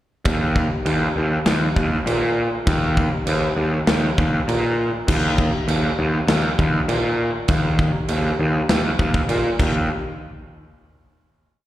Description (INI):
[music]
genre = heavy metal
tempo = 100 BPM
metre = 4/4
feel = straight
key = unclear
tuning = A4 = 440 Hz
[part]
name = modern studio drum kit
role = drums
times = 0.2-9.7 s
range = china cymbal, crash cymbal, kick drum, snare drum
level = -22 LUFS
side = equal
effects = none
[part]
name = fuzz picked electric bass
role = bass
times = 0.3-9.9 s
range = Eb2 to Bb2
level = -19 LUFS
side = equal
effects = overdrive
[sound]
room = little or no reverb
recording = live gig heard through the venue's PA, recital hall reverb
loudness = -18 LUFS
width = side -14 dB against mid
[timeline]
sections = 0.3-9.9 riff; 9.9-11.7 final hit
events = none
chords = none